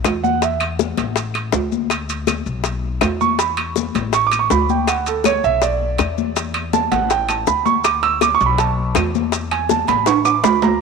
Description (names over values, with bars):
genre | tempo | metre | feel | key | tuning
latin, Cuban son and guajira | 162 BPM | 4/4 | straight | unclear | A4 = 440 Hz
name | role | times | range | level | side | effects
upright bass | bass | 0.0-10.8 s | A1 to E2 | -25 LUFS | left 3 dB | none
bongos | percussion | 0.0-10.8 s | none | -22 LUFS | left 14 dB | none
claves | percussion | 0.1-10.4 s | none | -27 LUFS | left 14 dB | none
congas | percussion | 0.1-10.8 s | none | -24 LUFS | left 18 dB | none
maracas | percussion | 0.1-10.8 s | none | -31 LUFS | left 18 dB | none
timbales | percussion | 0.1-10.7 s | none | -23 LUFS | right 9 dB | none
warm concert grand piano | arpeggios | 0.2-0.6, 3.2-10.8 s | A4 to E6 | -18 LUFS | right 10 dB | none
room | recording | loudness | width
moderate plate reverb, RT60 3.0 s | 1960s-style stereo with parts hard left and right | -16 LUFS | side -4 dB against mid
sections
0.0-10.8 A section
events
grand piano solo 0.0-10.8; drum fill 10.1-10.8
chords
0.4 A5; 1.2 Asus4; 1.9 Bm; 2.6 Bsus24; 3.4 Asus2; 4.1 Aadd11; 4.9 Bm11; 5.6 Bm; 6.4 A5; 7.1 Aadd11; 7.8 Bmadd11; 8.6 B7sus4; 9.3 Eadd11; 10.1 Aadd11